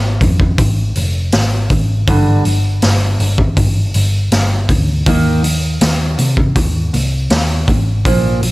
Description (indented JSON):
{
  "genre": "quiet-loud alternative rock",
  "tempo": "80 BPM",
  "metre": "4/4",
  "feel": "straight",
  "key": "unclear",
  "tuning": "A4 = 443 Hz",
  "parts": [
    { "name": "fingerpicked steel-string acoustic guitar", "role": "arpeggios", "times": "0.0-8.5 s", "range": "G2 to Eb4", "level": "-19 LUFS", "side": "right 1 dB", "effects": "none" },
    { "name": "hollow-body short-scale picked electric bass", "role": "bass", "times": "0.0-8.5 s", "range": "F1 to C3", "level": "-15 LUFS", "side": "equal", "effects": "none" },
    { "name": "raw garage drum kit", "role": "drums", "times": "0.2-8.5 s", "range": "hi-hat, kick drum, snare drum", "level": "-15 LUFS", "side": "equal", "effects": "none" }
  ],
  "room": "small room ambience",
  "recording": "none",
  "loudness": "-12 LUFS",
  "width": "side -20 dB against mid",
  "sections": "0.0-8.5 A section",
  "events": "none",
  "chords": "0.0 Ab5; 2.1 G5; 5.1 Eb5"
}